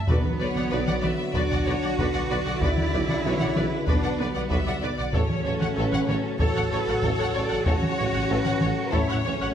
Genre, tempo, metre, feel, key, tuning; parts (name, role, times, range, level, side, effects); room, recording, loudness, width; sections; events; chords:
cinematic, epic orchestral film score; 95 BPM; 4/4; straight; B minor; A4 = 440 Hz
clear symphonic viola section; accompaniment; 0.0-9.5 s; F#4 to F#5; -34 LUFS; equal
clear symphonic violin section; melody; 0.1-9.5 s; A4 to F#5; -34 LUFS; left 3 dB
rich symphonic violin section; second line; 0.1-9.5 s; A4 to E5; -33 LUFS; left 5 dB
clear trombone section; sustained chords; 0.1-9.5 s; C#3 to F#4; -34 LUFS; right 2 dB
mellow French horn section; sustained chords; 0.1-9.5 s; C#3 to F#4; -32 LUFS; left 6 dB
rich symphonic cello section; bass; 0.1-9.5 s; B3 to A4; -29 LUFS; right 3 dB
rich symphonic double bass section; bass; 0.1-9.5 s; A1 to B1; -31 LUFS; right 2 dB
warm tuba; bass; 0.1-9.3 s; A1 to B1; -33 LUFS; right 3 dB
taiko ensemble; drums; 0.1-9.5 s; -27 LUFS; equal
timpani; percussion; 0.1-1.0 s; B2; -33 LUFS; equal
moderate scoring stage reverb, RT60 1.4 s; -22 LUFS; side -9 dB against mid
0.1-9.5 A section
0.1 Bm; 5.1 F#m/A